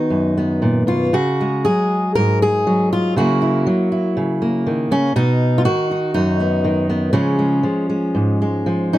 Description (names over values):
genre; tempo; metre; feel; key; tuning
folk, solo fingerstyle acoustic guitar; 119 BPM; 4/4; rubato; Db mixolydian; A4 = 440 Hz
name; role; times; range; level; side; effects
fingerpicked steel-string acoustic guitar; solo; 0.0-9.0 s; Gb2 to Bb4; -15 LUFS; equal; none
room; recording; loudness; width
light reverb; close, detailed microphones; -15 LUFS; side -15 dB against mid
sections
0.0-9.0 A section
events
none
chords
0.0 Cb; 1.1 Dbsus4; 3.2 Gb7/Db; 5.2 Cb; 7.1 Db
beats
0.11 0.62 | 1.14 1.66 2.16 2.67 | 3.17 3.67 4.17 4.67 | 5.16 5.65 6.14 6.64 | 7.13 7.64 8.15 8.67